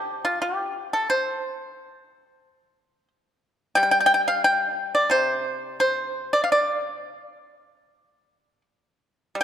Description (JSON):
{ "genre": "chinese traditional, Chinese solo plucked strings", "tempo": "80-90 BPM", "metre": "4/4", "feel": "rubato", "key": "G shang mode", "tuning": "A4 = 441 Hz", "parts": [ { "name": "pipa", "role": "solo", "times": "0.0-9.4 s", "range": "C3 to G5", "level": "-20 LUFS", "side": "equal", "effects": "none" } ], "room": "wet concert hall reverb, RT60 2.1 s", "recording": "dark, warm production", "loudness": "-20 LUFS", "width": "side -9 dB against mid", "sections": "0.0-9.4 A section", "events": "none", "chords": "none" }